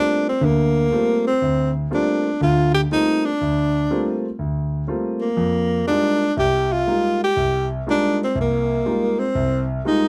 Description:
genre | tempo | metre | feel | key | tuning
jazz | 121 BPM | 4/4 | swing 66% on 8ths | G minor | A4 = 440 Hz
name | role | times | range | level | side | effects
clear tenor saxophone | melody | 0.0-10.1 s | Bb3 to G4 | -22 LUFS | equal | none
warm concert grand piano | accompaniment | 0.0-10.1 s | C2 to F4 | -24 LUFS | equal | none
room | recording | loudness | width
light reverb | dark, warm production | -20 LUFS | mono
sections
0.0-10.1 A section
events
none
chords
0.0 Gm11; 5.4 Fm11

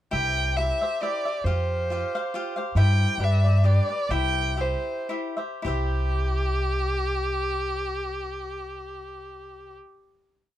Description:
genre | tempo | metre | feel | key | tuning
mexican folk, mariachi | 106-139 BPM | 3/4 | swing 53% on 8ths | C major | A4 = 439 Hz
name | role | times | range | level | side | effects
warm violin | melody | 0.1-9.7 s | G4 to G5 | -28 LUFS | equal | none
cavaquinho | accompaniment | 0.1-9.8 s | D4 to F5 | -32 LUFS | left 2 dB | none
upright bass | bass | 0.1-9.8 s | C2 to G2 | -24 LUFS | equal | none
room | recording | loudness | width
moderate booth ambience, RT60 0.2 s | none | -23 LUFS | side -12 dB against mid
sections
0.1-5.6 A section; 5.6-9.0 final chord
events
slowing down 2.8-5.6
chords
0.1 C; 1.4 Fsus2; 2.8 C/G; 3.2 G; 4.1 C

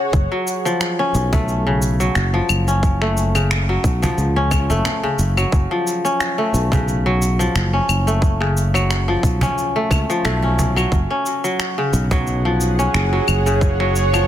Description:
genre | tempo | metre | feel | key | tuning
organic downtempo | 89 BPM | 4/4 | swing 55% on 16ths | F# harmonic minor | A4 = 440 Hz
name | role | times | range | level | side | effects
bowed-like drone | sustained chords | 0.0-0.1, 12.2-14.3 s | G#4 to F#5 | -24 LUFS | right 1 dB | built-in reverb, vintage 12-bit sampler grit, sidechain pumping
kora | arpeggios | 0.0-14.3 s | C#3 to C#4 | -20 LUFS | left 1 dB | tape echo
sustaining fretless electric bass | bass | 0.1-14.3 s | F#1 to C#2 | -19 LUFS | equal | none
electronic kick drum | drums | 0.1-13.8 s | none | -18 LUFS | equal | overdrive
electronic shaker, finger snaps and claves | drums | 0.1-14.3 s | none | -25 LUFS | left 1 dB | soft clipping on snare
cajon | percussion | 1.3-14.3 s | none | -26 LUFS | right 2 dB | none
room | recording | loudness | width
light reverb, digital ambience | dense, heavily limited modern master | -16 LUFS | side -11 dB against mid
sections
0.1-14.3 A section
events
none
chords
0.1 F#m; 10.9 C#sus4/F#

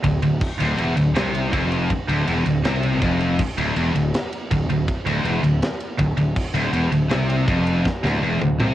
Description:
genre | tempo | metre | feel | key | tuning
heavy metal | 161 BPM | 4/4 | straight | D minor | A4 = 440 Hz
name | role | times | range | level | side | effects
scooped high-gain guitar | riff | 0.0-8.7 s | D2 to C3 | -22 LUFS | left 4 dB | distortion, cassette tape
scooped high-gain guitar | riff | 0.0-8.7 s | D2 to C3 | -24 LUFS | right 6 dB | distortion, cassette tape
fuzz fingered electric bass | bass | 0.0-8.7 s | D1 to C2 | -25 LUFS | equal | overdrive
tight metal drum kit | drums | 0.0-8.7 s | crash cymbal, kick drum, ride cymbal, snare drum, toms | -26 LUFS | equal | cassette tape
room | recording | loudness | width
little or no reverb | home recording on cassette | -18 LUFS | side -13 dB against mid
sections
0.0-8.7 A section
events
half time 0.0-8.7; drum fill 7.9-8.7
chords
0.0 Dm

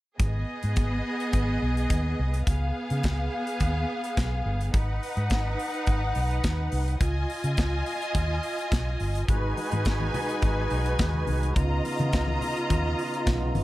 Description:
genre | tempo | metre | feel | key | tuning
disco | 106 BPM | 4/4 | straight | G# dorian | A4 = 440 Hz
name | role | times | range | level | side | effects
clear studio string section | second line | 0.2-13.6 s | B3 to A#5 | -30 LUFS | equal | none
vintage muted fingered electric bass | bass | 0.2-13.6 s | G1 to C#3 | -27 LUFS | equal | none
modern studio drum kit | drums | 0.2-13.6 s | hi-hat, kick drum, snare drum | -28 LUFS | equal | none
tonewheel organ | sustained chords | 9.3-13.6 s | C#3 to B4 | -32 LUFS | equal | slow rotary speaker
congas | percussion | 9.3-13.6 s | none | -35 LUFS | left 3 dB | none
room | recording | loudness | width
light reverb, small room ambience | none | -24 LUFS | side -16 dB against mid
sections
0.2-13.6 A section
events
none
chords
0.2 G#m; 2.5 C#9; 4.7 G#m7; 7.0 C#9; 9.3 G#m7; 11.6 C#9

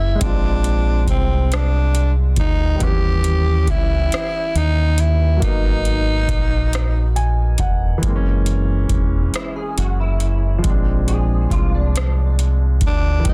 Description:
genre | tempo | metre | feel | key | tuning
slow six-eight R&B | 46 BPM (dotted quarters) | 6/8 | straight | unclear | A4 = 438 Hz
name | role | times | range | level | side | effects
growling tenor saxophone | melody | 0.0-7.1, 12.9-13.3 s | B#3 to G4 | -26 LUFS | equal | none
warm concert grand piano | accompaniment | 0.0-13.3 s | E3 to G#5 | -28 LUFS | equal | none
deep dub fingered electric bass | bass | 0.0-13.3 s | E1 to D#2 | -20 LUFS | equal | none
booming analog drum machine | drums | 0.2-13.3 s | hi-hat, kick drum, rim click | -23 LUFS | equal | soft clipping on snare
electric guitar at the edge of break-up | second line | 9.4-13.0 s | D4 to G#4 | -32 LUFS | equal | ensemble chorus, digital delay
room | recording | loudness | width
little or no reverb | dense, heavily limited modern master | -18 LUFS | mono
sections
0.0-13.3 A section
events
grand piano fill 6.7-8.0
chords
0.2 A#9; 2.8 D#7b9b13; 5.4 G#m9; 8.0 F#9; 10.6 A#9

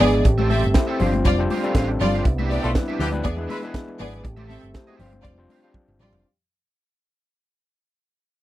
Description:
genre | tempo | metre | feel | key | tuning
disco | 120 BPM | 4/4 | straight | unclear | A4 = 440 Hz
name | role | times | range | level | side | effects
clear studio string section | second line | 0.0-6.2 s | G3 to E5 | -23 LUFS | equal | none
overdriven tine electric piano | accompaniment | 0.0-6.3 s | G3 to D5 | -27 LUFS | left 4 dB | none
mellow French horn section | sustained chords | 0.0-6.2 s | C3 to G#4 | -29 LUFS | right 3 dB | none
picked electric bass with an envelope filter | bass | 0.0-6.2 s | F1 to E2 | -24 LUFS | equal | none
tight funk drum kit | drums | 0.0-6.2 s | hi-hat, kick drum, snare drum, toms | -20 LUFS | equal | none
congas | percussion | 0.0-6.1 s | none | -31 LUFS | left 5 dB | none
electric guitar at the edge of break-up | accompaniment | 0.1-6.2 s | C4 to F5 | -32 LUFS | right 4 dB | analog chorus
warm horn section | stabs | 2.6-3.6 s | E3 to B4 | -30 LUFS | left 2 dB | none
room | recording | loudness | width
little or no reverb | dry, close 1970s-style studio recording | -18 LUFS | side -15 dB against mid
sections
0.0-6.2 A section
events
fade-out 0.0-6.2; drum fill 5.7-6.2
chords
0.3 Am7; 1.0 G7sus4; 2.2 Cmaj9; 3.2 E7; 4.2 Am7; 5.0 G7sus4

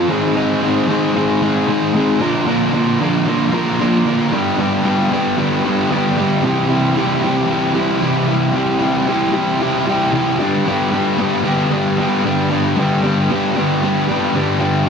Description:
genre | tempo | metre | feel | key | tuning
rock | 114 BPM | 4/4 | straight | C major | A4 = 440 Hz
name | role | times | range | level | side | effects
overdriven electric guitar | solo | 0.0-14.9 s | G2 to Bb4 | -14 LUFS | equal | none
room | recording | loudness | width
little or no reverb | dry, close 1970s-style studio recording | -14 LUFS | side -6 dB against mid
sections
0.0-6.4 A section; 6.4-14.9 B section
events
none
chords
0.1 Ab; 2.2 Bb; 4.3 G; 6.4 C; 10.4 G

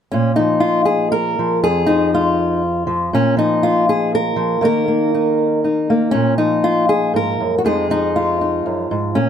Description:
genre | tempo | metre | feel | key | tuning
folk, solo fingerstyle acoustic guitar | 120 BPM | 3/4 | straight | Bb minor | A4 = 436 Hz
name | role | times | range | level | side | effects
fingerpicked old ladder-braced acoustic guitar | solo | 0.1-9.3 s | F2 to Bb4 | -14 LUFS | left 1 dB | none
room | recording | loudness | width
light reverb | none | -14 LUFS | side -8 dB against mid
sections
0.1-9.3 A section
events
none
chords
0.1 Bb5; 1.6 N.C.; 3.1 Bb5; 4.6 Eb5; 6.1 Bb5; 7.7 Fm7

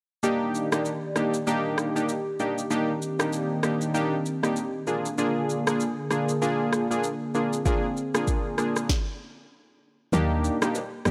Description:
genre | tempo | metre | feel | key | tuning
afrobeats | 97 BPM | 4/4 | swing 58% on 16ths | Eb major | A4 = 440 Hz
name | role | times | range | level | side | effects
warm analog keys | accompaniment | 0.2-11.1 s | Bb3 to Ab4 | -28 LUFS | equal | chorus
hollow soft pad | sustained chords | 0.2-8.9 s | D3 to D5 | -34 LUFS | equal | chorus
afro-pop drum kit | drums | 0.2-11.1 s | kick drum, rim click, shaker, snare drum | -32 LUFS | equal | none
woody log drum bass | bass | 10.1-11.1 s | D2 to Eb2 | -26 LUFS | equal | none
congas and bongos | percussion | 10.1-10.9 s | none | -35 LUFS | equal | none
room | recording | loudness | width
light reverb | dry, gritty hardware recording | -26 LUFS | mono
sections
0.2-10.1 A section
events
stop 8.9-10.1; kick muted 10.1-11.1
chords
0.2 Ebmaj7; 4.9 Bb7; 10.1 Ebmaj7

